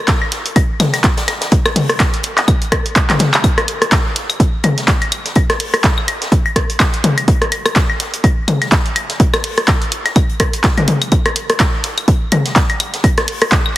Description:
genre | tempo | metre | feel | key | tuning
techno | 125 BPM | 4/4 | swing 57% on 16ths | none | none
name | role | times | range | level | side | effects
electronic kick drum | drums | 0.1-13.6 s | none | -14 LUFS | equal | none
open jazz drum kit | drums | 0.1-13.7 s | hi-hat, snare drum | -28 LUFS | left 2 dB | sidechain pumping on hats, high-pass filter on hats, high-pass filter on snare, high-pass filter on room
punchy analog drum machine | drums | 0.1-13.6 s | handclaps, hi-hat | -18 LUFS | right 1 dB | none
techno drum kit | percussion | 0.2-13.7 s | claves, rim click, toms | -17 LUFS | left 2 dB | none
room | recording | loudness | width
light reverb | heavily compressed radio sound, multiband compression | -12 LUFS | side -15 dB against mid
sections
0.0-13.8 A section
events
drum fill 3.1-3.4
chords
none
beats
0.08 0.56 1.04 | 1.52 2.00 2.48 2.96 | 3.44 3.92 4.40 4.88 | 5.36 5.84 6.32 6.80 | 7.28 7.76 8.24 8.72 | 9.20 9.68 10.16 10.64 | 11.12 11.60 12.08 12.56 | 13.04 13.52

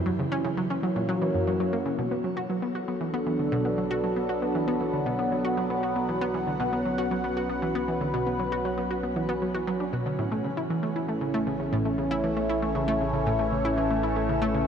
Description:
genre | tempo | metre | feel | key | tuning
ambient, sequencer-driven space music | 117 BPM | 4/4 | straight | B minor | A4 = 439 Hz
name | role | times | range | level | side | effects
sweeping resonant pad | sustained chords | 0.0-14.7 s | E3 to F#5 | -28 LUFS | equal | chorus, phaser, shimmer reverb
analog pluck | riff | 0.1-14.6 s | F#2 to F#4 | -28 LUFS | equal | chorus, tape echo, shimmer reverb
analog drone | bass | 2.0-14.7 s | A1 to B1 | -38 LUFS | equal | chorus
room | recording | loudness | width
wet huge ambient reverb, RT60 8.1 s | cassette tape, nothing above 10.8 kHz | -25 LUFS | side -7 dB against mid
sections
0.0-2.0 A section; 2.0-14.7 B section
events
fade-in on synth drone 2.0-14.7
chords
0.0 F#7; 2.0 Bm7; 10.2 A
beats
0.45 0.96 1.47 | 1.98 2.50 3.01 3.52 | 4.04 4.55 5.06 5.57 | 6.09 6.60 7.11 7.62 | 8.14 8.65 9.16 9.68 | 10.19 10.70 11.21 11.73 | 12.24 12.75 13.27 13.78 | 14.29

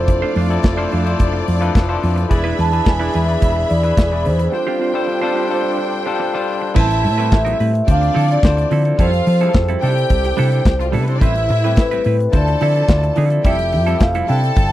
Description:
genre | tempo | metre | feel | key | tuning
disco | 108 BPM | 4/4 | straight | unclear | A4 = 440 Hz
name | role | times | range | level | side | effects
vibraphone with soft mallets | melody | 0.0-14.7 s | B4 to A5 | -20 LUFS | right 1 dB | tape echo
rich studio string section | second line | 0.0-14.7 s | F3 to B5 | -24 LUFS | equal | none
barky tine electric piano | accompaniment | 0.0-14.7 s | C3 to E5 | -24 LUFS | left 5 dB | overdrive
mellow French horn section | sustained chords | 0.0-6.7 s | E3 to G#4 | -28 LUFS | right 1 dB | none
hollow-body short-scale fingered electric bass | bass | 0.0-14.7 s | E1 to F3 | -18 LUFS | equal | none
semi-hollow electric guitar | accompaniment | 0.1-14.6 s | F3 to C5 | -25 LUFS | right 8 dB | none
modern studio drum kit | drums | 0.1-14.7 s | crash cymbal, hi-hat, kick drum, snare drum | -15 LUFS | equal | none
room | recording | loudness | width
little or no reverb | dry, close 1970s-style studio recording | -14 LUFS | side -14 dB against mid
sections
0.0-6.8 A section; 6.8-14.7 B section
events
break 4.5-6.8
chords
0.0 Dm7/F; 2.3 E7; 4.5 G7sus4; 6.8 Am9; 7.9 Dm9; 9.0 Fmaj9; 9.8 C69; 11.2 Am9; 12.3 Dm9; 13.4 Fmaj9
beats
| 0.08 0.64 1.20 1.75 | 2.31 2.87 3.42 3.98 | 4.54 5.09 5.65 6.21 | 6.76 7.32 7.88 8.43 | 8.99 9.54 10.10 10.66 | 11.22 11.77 12.33 12.89 | 13.45 14.01 14.56

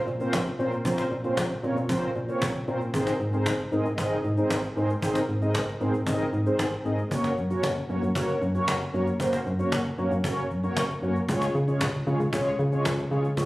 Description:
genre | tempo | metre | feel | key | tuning
dance-pop | 115 BPM | 4/4 | straight | unclear | A4 = 442 Hz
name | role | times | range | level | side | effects
organ-like FM bass | bass | 0.1-13.5 s | Gb1 to Db3 | -28 LUFS | equal | none
cajon | drums | 0.1-13.5 s | none | -32 LUFS | equal | none
mellow synth brass | accompaniment | 0.2-13.5 s | Ab3 to Eb5 | -27 LUFS | equal | chorus
room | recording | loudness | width
moderate plate reverb, RT60 1.7 s, small room ambience | recorded on a phone in the room, club reverb | -24 LUFS | side -18 dB against mid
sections
0.0-13.5 A section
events
none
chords
0.0 Bbmadd9; 2.9 Abadd9; 7.1 Gb; 11.3 Db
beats
0.33 | 0.85 1.37 1.90 2.42 | 2.94 3.46 3.98 4.50 | 5.03 5.55 6.07 6.59 | 7.11 7.63 8.15 8.68 | 9.20 9.72 10.24 10.76 | 11.29 11.81 12.33 12.85 | 13.37

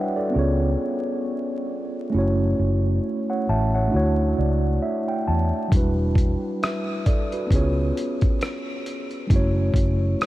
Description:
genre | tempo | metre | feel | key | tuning
lo-fi hip hop | 67 BPM | 4/4 | swing 58% on 16ths | unclear | A4 = 439 Hz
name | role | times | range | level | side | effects
mellow tine electric piano | accompaniment | 0.0-10.3 s | F#3 to A5 | -24 LUFS | right 1 dB | medium stereo tremolo, cassette tape, low-pass filter
vintage muted fingered electric bass | bass | 0.4-10.1 s | E1 to E2 | -22 LUFS | equal | none
dusty soul sampler-style drum kit | drums | 5.7-10.3 s | hi-hat, kick drum, rim click | -22 LUFS | equal | none
room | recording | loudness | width
light reverb | vinyl crackle | -20 LUFS | side -16 dB against mid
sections
0.0-10.3 A section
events
tine electric piano fill 3.9-5.7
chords
0.3 C#7; 2.1 F#m7; 3.9 Dmaj9; 5.7 Em9; 7.5 C#7; 9.3 F#m7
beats
0.34 1.24 | 2.14 3.03 3.93 4.82 | 5.72 6.61 7.51 8.40 | 9.30 10.20

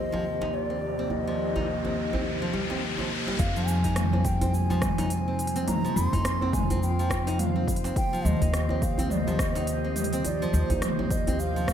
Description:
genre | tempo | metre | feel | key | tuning
organic downtempo | 105 BPM | 4/4 | swing 59% on 16ths | F minor | A4 = 441 Hz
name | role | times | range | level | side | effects
bansuri | melody | 0.0-11.7 s | C5 to C6 | -33 LUFS | right 1 dB | ping-pong delay
mellow tine electric piano | accompaniment | 0.0-11.7 s | Eb2 to F4 | -36 LUFS | right 1 dB | fast stereo tremolo, sidechain pumping, tape echo
airy breathy pad | sustained chords | 0.0-11.7 s | Eb2 to Eb5 | -33 LUFS | left 1 dB | chorus, sidechain pumping
riser | sound effects | 0.4-3.4 s | none | -36 LUFS | left 2 dB | none
nylon-string guitar | arpeggios | 0.1-11.7 s | F3 to Eb4 | -34 LUFS | right 1 dB | tape echo
djembe | percussion | 0.1-11.7 s | none | -36 LUFS | equal | none
upright bass | bass | 3.4-11.7 s | Eb2 to F2 | -28 LUFS | equal | sidechain pumping
electronic kick drum | drums | 3.4-11.7 s | none | -30 LUFS | equal | none
organic electronic drum kit | drums | 3.4-11.7 s | hi-hat, rim click, shaker, toms | -32 LUFS | equal | overdrive, low-pass filter on hats, low-pass filter on perc, low-pass filter on snare, low-pass filter on toms, low-pass filter on room
drifting glass-harmonics texture | texture | 4.3-11.7 s | C5 | -42 LUFS | equal | chorus, built-in reverb
room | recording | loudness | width
moderate plate reverb, RT60 2.7 s | dreamy mix soaked in reverb | -24 LUFS | side -9 dB against mid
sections
0.0-3.4 A section; 3.4-11.7 B section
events
riser 0.4-3.4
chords
0.0 Cm7/Eb; 3.4 Fm9; 8.0 Cm7/Eb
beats
0.53 | 1.10 1.68 2.25 2.82 | 3.39 3.96 4.53 5.11 | 5.68 6.25 6.82 7.39 | 7.96 8.53 9.11 9.68 | 10.25 10.82 11.39

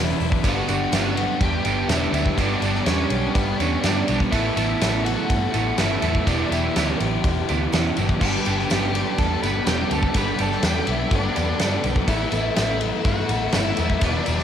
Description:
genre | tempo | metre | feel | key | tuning
rock, shoegaze and dream pop | 124 BPM | 4/4 | straight | unclear | A4 = 439 Hz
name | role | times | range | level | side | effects
string machine, full ensemble | sustained chords | 0.0-0.4, 8.2-14.4 s | G3 to E6 | -32 LUFS | equal | phaser, ensemble chorus, cassette tape
direct-recorded clean electric guitar | arpeggios | 0.0-14.4 s | E3 to E4 | -34 LUFS | right 9 dB | lush chorus, cassette tape, analog delay
overdriven electric guitar | riff | 0.0-14.4 s | E2 to A4 | -27 LUFS | left 10 dB | wide subtle chorus, cassette tape
overdriven semi-hollow guitar | riff | 0.0-14.4 s | E3 to B4 | -26 LUFS | right 9 dB | reverse reverb, cassette tape
vintage muted picked electric bass | bass | 0.0-14.4 s | E1 to G2 | -26 LUFS | equal | none
huge arena drum kit | drums | 0.2-14.4 s | crash cymbal, hi-hat, kick drum, ride cymbal, snare drum | -24 LUFS | equal | cassette tape
tambourine | percussion | 0.4-14.4 s | none | -39 LUFS | right 6 dB | none
octave-fuzz lead guitar | melody | 0.5-14.4 s | B3 to B4 | -28 LUFS | left 1 dB | distortion, cassette tape, analog delay
room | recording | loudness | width
studio ambience | home recording on cassette | -19 LUFS | side -9 dB against mid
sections
0.4-14.4 A section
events
none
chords
0.0 Em7; 4.3 Asus2; 6.3 Em7; 12.1 Asus2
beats
| 0.45 0.93 1.42 1.90 | 2.39 2.87 3.36 3.85 | 4.33 4.82 5.30 5.79 | 6.27 6.76 7.24 7.73 | 8.21 8.70 9.18 9.67 | 10.15 10.64 11.12 11.61 | 12.09 12.57 13.06 13.54 | 14.03

